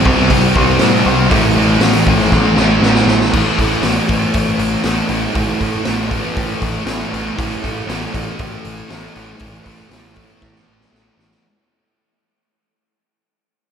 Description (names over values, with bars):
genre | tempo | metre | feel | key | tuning
rock, shoegaze and dream pop | 118 BPM | 4/4 | straight | A minor | A4 = 440 Hz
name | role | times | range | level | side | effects
thick fuzz guitar | riff | 0.0-11.4 s | A2 to C4 | -15 LUFS | equal | distortion, wide subtle chorus
growling picked electric bass | bass | 0.0-11.3 s | A1 to A2 | -20 LUFS | equal | overdrive
raw garage drum kit | drums | 0.1-11.4 s | crash cymbal, hi-hat, kick drum, snare drum | -19 LUFS | equal | none
room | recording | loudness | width
moderate huge ambient reverb, RT60 8.8 s | dreamy mix soaked in reverb | -12 LUFS | side -8 dB against mid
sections
0.0-3.3 A section; 3.3-11.4 B section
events
drum fill 2.3-3.3, 10.4-11.4; fade-out 3.3-11.4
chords
0.0 C5; 1.3 A5